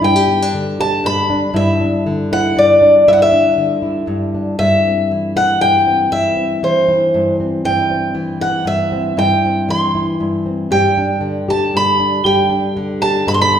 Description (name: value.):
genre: acoustic folk duo or small band.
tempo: 118 BPM.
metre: 3/4.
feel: straight.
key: unclear.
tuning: A4 = 441 Hz.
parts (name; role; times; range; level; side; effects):
picked old ladder-braced acoustic guitar; melody; 0.0-13.6 s; C5 to C6; -14 LUFS; equal; none.
nylon-string guitar; accompaniment; 0.0-13.6 s; G2 to G4; -17 LUFS; left 1 dB; none.
room: wet recital hall reverb, RT60 1.5 s.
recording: recorded in a church or concert hall.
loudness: -13 LUFS.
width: side -8 dB against mid.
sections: 0.0-4.6 A section; 4.6-13.6 A section.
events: none.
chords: 0.0 G; 1.6 Dsus2/G; 4.6 C/G; 10.7 G.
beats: | 0.03 0.54 1.04 | 1.55 2.06 2.56 | 3.07 3.58 4.09 | 4.60 5.10 5.61 | 6.12 6.63 7.14 | 7.65 8.16 8.67 | 9.18 9.69 10.20 | 10.71 11.22 11.73 | 12.24 12.75 13.26.